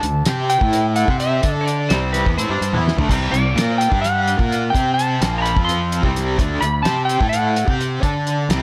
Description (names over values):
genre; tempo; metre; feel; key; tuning
psychedelic rock; 255 BPM (eighths); 7/8; straight; unclear; A4 = 437 Hz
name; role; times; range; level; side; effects
clean lap steel guitar; melody; 0.0-7.7 s; B4 to C6; -23 LUFS; equal; slapback echo
overdriven electric guitar; riff; 0.0-8.6 s; Bb2 to D5; -24 LUFS; equal; tremolo
fuzz fingered electric bass; bass; 0.0-8.6 s; Bb1 to D3; -24 LUFS; equal; overdrive
cloth-damped thuddy drum kit; drums; 0.0-8.6 s; crash cymbal, hi-hat, kick drum, snare drum, toms; -23 LUFS; equal; none
room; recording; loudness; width
moderate spring reverb, RT60 1.9 s, studio ambience; none; -18 LUFS; mono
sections
0.0-8.6 A section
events
electric slide guitar solo 0.0-8.6; drum fill 2.7-3.1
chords
0.0 D5; 0.6 A5; 1.1 Dsus2/C; 3.1 Csus2; 3.9 G5; 4.4 C5; 5.6 F5; 6.0 C5; 6.4 D5; 7.2 A5; 7.7 D5/C